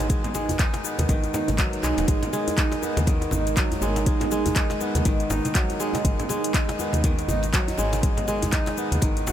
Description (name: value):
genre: afro house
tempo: 121 BPM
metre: 4/4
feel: swing 59% on 16ths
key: G# minor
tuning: A4 = 440 Hz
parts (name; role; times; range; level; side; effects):
- dark analog pad; sustained chords; 0.0-9.3 s; G#3 to D#5; -29 LUFS; right 4 dB; chorus, phaser, sidechain pumping
- kora; arpeggios; 0.0-9.3 s; D#3 to F#4; -28 LUFS; left 2 dB; sidechain pumping, low-pass filter, ping-pong delay
- woody FM bass; bass; 0.0-9.3 s; D#1 to D#2; -28 LUFS; equal; sidechain pumping
- afro-pop drum kit; drums; 0.0-9.3 s; handclaps, hi-hat, shaker; -30 LUFS; left 2 dB; none
- congas; percussion; 0.0-9.3 s; none; -34 LUFS; right 2 dB; none
- djembe; percussion; 0.0-9.3 s; none; -35 LUFS; left 2 dB; none
- electronic kick drum; drums; 0.1-9.1 s; none; -23 LUFS; equal; none
room: light reverb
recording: none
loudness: -21 LUFS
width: side -11 dB against mid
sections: 0.0-9.3 A section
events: none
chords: 0.0 G#m7